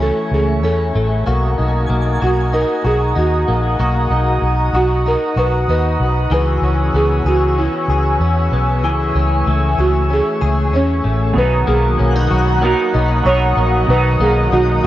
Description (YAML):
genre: dream pop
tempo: 95 BPM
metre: 4/4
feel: straight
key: B major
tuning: A4 = 440 Hz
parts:
  - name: buzzing marimba with soft mallets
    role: melody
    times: 0.0-14.9 s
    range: C#4 to C#5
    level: -20 LUFS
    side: right 2 dB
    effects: digital delay
  - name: hollow soft pad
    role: sustained chords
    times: 0.0-14.9 s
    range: A3 to E6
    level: -21 LUFS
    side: equal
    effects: chorus
  - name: direct-recorded clean electric guitar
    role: arpeggios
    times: 0.0-14.9 s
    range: E3 to G#4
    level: -21 LUFS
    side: left 3 dB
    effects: ensemble chorus, digital delay
  - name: vintage muted fingered electric bass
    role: bass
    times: 0.0-14.9 s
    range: A1 to E2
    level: -16 LUFS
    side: equal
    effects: none
  - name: semi-hollow electric guitar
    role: accompaniment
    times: 11.3-14.9 s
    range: B2 to A#4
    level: -21 LUFS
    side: right 3 dB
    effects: harmonic tremolo, analog chorus
room: moderate shimmer reverb, RT60 9.5 s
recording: worn, warbling old tape, cassette tape, warbly pitch drift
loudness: -13 LUFS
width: side -14 dB against mid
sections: 0.0-11.4 A section; 11.4-14.9 B section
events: none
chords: 0.0 Amaj7/C#; 1.3 Bmaj7; 6.3 C#m7; 8.8 Amaj7/C#; 11.4 Bmaj7